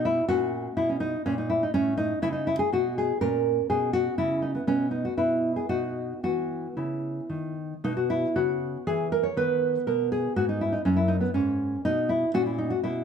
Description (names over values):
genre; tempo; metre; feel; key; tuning
classical, baroque-style dance for nylon-string guitar; 108-128 BPM; 3/4; rubato; E major, B major from 7.8 s; A4 = 439 Hz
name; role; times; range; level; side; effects
nylon-string guitar; solo; 0.0-13.0 s; F#2 to C#5; -24 LUFS; equal; none
room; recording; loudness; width
moderate recital hall reverb, RT60 1.6 s; close, detailed microphones; -24 LUFS; side -7 dB against mid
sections
0.0-7.8 A section; 7.8-13.0 A section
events
none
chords
0.3 F#/A#; 1.7 Amaj9#11; 3.2 A#m7b5; 4.7 N.C.; 5.7 B; 6.2 E5; 7.8 B5; 9.4 B; 10.9 F#; 12.3 C#m13/A#